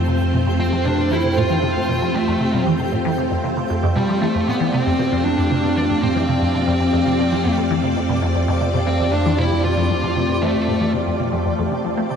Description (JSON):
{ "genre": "ambient, sequencer-driven space music", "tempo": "116 BPM", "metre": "4/4", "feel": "straight", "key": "F major", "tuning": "A4 = 440 Hz", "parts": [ { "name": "phased string machine", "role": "sustained chords", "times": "0.0-12.2 s", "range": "A3 to D5", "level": "-23 LUFS", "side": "equal", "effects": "ensemble chorus, phaser" }, { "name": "resonant blip pluck", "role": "riff", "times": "0.0-12.2 s", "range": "F2 to A3", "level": "-22 LUFS", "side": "equal", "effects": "phaser, lush chorus, analog delay" }, { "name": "analog drone", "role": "bass", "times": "0.0-12.2 s", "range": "F2", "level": "-24 LUFS", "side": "equal", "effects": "chorus" }, { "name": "twinkling granular texture", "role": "texture", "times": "0.0-12.2 s", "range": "G4 to G5", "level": "-27 LUFS", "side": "right 1 dB", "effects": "built-in reverb" }, { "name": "fuzz lead guitar", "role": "melody", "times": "0.6-10.9 s", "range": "G3 to F4", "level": "-22 LUFS", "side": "left 1 dB", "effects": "distortion, analog delay" } ], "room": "wet cathedral reverb, RT60 5.7 s", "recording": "in a vast, echoing space", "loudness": "-16 LUFS", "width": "side -7 dB against mid", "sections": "0.0-12.2 A section", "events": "none", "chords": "0.0 F", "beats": "| 0.08 0.59 1.11 1.63 | 2.15 2.66 3.18 3.70 | 4.22 4.73 5.25 5.77 | 6.29 6.80 7.32 7.84 | 8.35 8.87 9.39 9.91 | 10.42 10.94 11.46 11.97" }